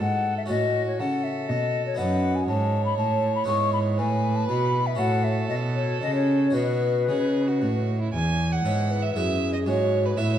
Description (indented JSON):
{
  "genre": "classical, baroque-style sonata movement with continuo",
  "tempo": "119 BPM",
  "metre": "3/4",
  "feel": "rubato",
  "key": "E major",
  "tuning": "A4 = 440 Hz",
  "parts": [
    { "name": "mellow hollow silver concert flute", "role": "melody", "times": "0.0-10.4 s", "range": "E4 to C#6", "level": "-27 LUFS", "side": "left 7 dB", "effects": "none" },
    { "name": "rich violin", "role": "second line", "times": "0.0-10.4 s", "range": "E4 to G#5", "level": "-30 LUFS", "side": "right 7 dB", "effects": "none" },
    { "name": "harpsichord", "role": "accompaniment", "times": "0.0-10.4 s", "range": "E2 to C#5", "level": "-30 LUFS", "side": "left 1 dB", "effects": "none" },
    { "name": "clear cello", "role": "bass", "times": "0.0-10.4 s", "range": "E2 to C#3", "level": "-25 LUFS", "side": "right 1 dB", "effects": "none" }
  ],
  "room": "wet recital hall reverb, RT60 1.6 s",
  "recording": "dark, warm production",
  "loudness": "-22 LUFS",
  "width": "side -10 dB against mid",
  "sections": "0.0-8.1 A section; 8.1-10.4 A section",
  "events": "none",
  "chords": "0.5 F#m/A; 2.0 B7/F#; 3.5 E/G#; 5.0 F#m/A; 6.5 B; 8.1 E; 9.7 E/G#"
}